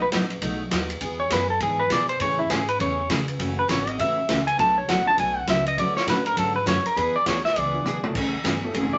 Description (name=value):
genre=country, western swing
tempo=202 BPM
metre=4/4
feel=swing 62% on 8ths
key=A major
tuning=A4 = 440 Hz
part: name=clean lap steel guitar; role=melody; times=0.0-9.0 s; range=E4 to A5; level=-25 LUFS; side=equal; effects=none
part: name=picked steel-string acoustic guitar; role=accompaniment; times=0.0-8.9 s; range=B2 to G#4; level=-30 LUFS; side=equal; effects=none
part: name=upright bass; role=bass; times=0.0-9.0 s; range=F#1 to B2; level=-35 LUFS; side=equal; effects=none
part: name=swinging big-band drum kit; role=drums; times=0.1-8.8 s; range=crash cymbal, hi-hat, kick drum, ride cymbal, snare drum, toms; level=-31 LUFS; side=equal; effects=none
part: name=clear upright piano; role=accompaniment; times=4.6-9.0 s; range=A3 to B4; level=-37 LUFS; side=equal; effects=none
room=wet studio ambience, RT60 0.5 s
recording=nothing above 7.9 kHz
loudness=-23 LUFS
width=mono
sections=0.0-9.0 A section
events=electric slide guitar solo 0.0-9.0; drum fill 7.9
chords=0.0 B7; 1.0 E7; 2.2 Amaj7; 3.4 F#m7; 4.6 Bm7; 5.8 Dmaj7; 7.0 E7; 8.2 Amaj7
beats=0.12 0.42 0.72 | 1.01 1.31 1.61 1.91 | 2.21 2.50 2.80 3.10 | 3.39 3.69 3.99 4.29 | 4.58 4.88 5.18 5.47 | 5.77 6.07 6.37 6.66 | 6.96 7.26 7.55 7.85 | 8.15 8.45 8.74